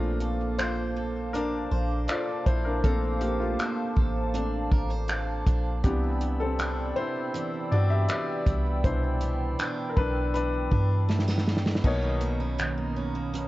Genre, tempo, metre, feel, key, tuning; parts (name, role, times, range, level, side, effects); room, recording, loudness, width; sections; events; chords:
contemporary R&B; 80 BPM; 4/4; straight; A4 = 440 Hz
warm grand piano; accompaniment; 0.0-13.5 s; B2 to E5; -31 LUFS; left 3 dB
hollow soft pad; sustained chords; 0.1-13.5 s; B#4 to E6; -36 LUFS; right 1 dB; chorus
picked steel-string acoustic guitar; arpeggios; 0.0-13.5 s; B2 to B#4; -34 LUFS; right 5 dB; digital delay
soft 808-style bass; bass; 0.0-13.5 s; A1 to G2; -28 LUFS; equal
warm soul drum kit; drums; 0.2-13.5 s; crash cymbal, finger snaps, hi-hat, kick drum, snare drum; -27 LUFS; equal
light reverb, small room ambience; worn, warbling old tape, cassette tape, warbly pitch drift, nothing above 7.8 kHz; -24 LUFS; side -17 dB against mid
0.0-11.8 A section; 11.8-13.5 B section
grand piano solo 0.0-11.8; drum fill 11.1-11.8
0.0 A#maj9; 5.8 Cmaj9; 11.8 Bmaj9